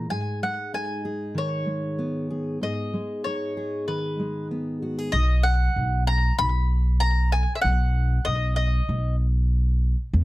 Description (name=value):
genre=indie folk with a building arrangement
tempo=96 BPM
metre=4/4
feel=straight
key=B major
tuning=A4 = 439 Hz
part: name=mandolin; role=melody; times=0.0-9.2 s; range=B4 to B5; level=-28 LUFS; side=left 1 dB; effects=slapback echo
part: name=fingerpicked steel-string acoustic guitar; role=accompaniment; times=0.0-5.1 s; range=G#2 to G#4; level=-28 LUFS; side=equal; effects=none
part: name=upright bass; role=bass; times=5.1-10.2 s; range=B1 to E2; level=-21 LUFS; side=equal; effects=none
room=little or no reverb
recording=dry, close 1970s-style studio recording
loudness=-22 LUFS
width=side -18 dB against mid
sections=0.0-5.1 A section; 5.1-10.2 B section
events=none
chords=0.1 G#m; 5.1 B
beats=| 0.10 0.73 1.36 1.99 | 2.62 3.25 3.88 4.51 | 5.14 5.77 6.39 7.02 | 7.64 8.27 8.89 9.51 | 10.13